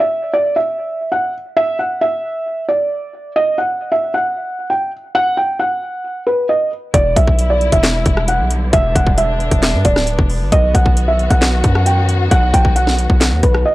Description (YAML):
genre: hip hop, trap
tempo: 134 BPM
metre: 4/4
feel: half-time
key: E minor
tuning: A4 = 438 Hz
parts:
  - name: felt-muted upright piano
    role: melody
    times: 0.0-13.7 s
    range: B4 to G5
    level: -16 LUFS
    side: right 1 dB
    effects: low-pass filter
  - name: dark symphonic string section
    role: sustained chords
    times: 6.9-13.7 s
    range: D3 to F#4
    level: -24 LUFS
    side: left 1 dB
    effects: none
  - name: distorted 808-style bass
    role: bass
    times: 6.9-13.6 s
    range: D1 to G2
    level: -16 LUFS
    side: equal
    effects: distortion
  - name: trap drum kit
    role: drums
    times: 6.9-13.6 s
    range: handclaps, hi-hat, kick drum, rim click, snare drum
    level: -15 LUFS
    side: equal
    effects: overdrive
room: digital ambience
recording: dry, gritty hardware recording, cassette tape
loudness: -13 LUFS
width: side -17 dB against mid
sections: 0.0-13.7 A section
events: none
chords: 0.0 N.C.; 6.9 Em7; 10.5 B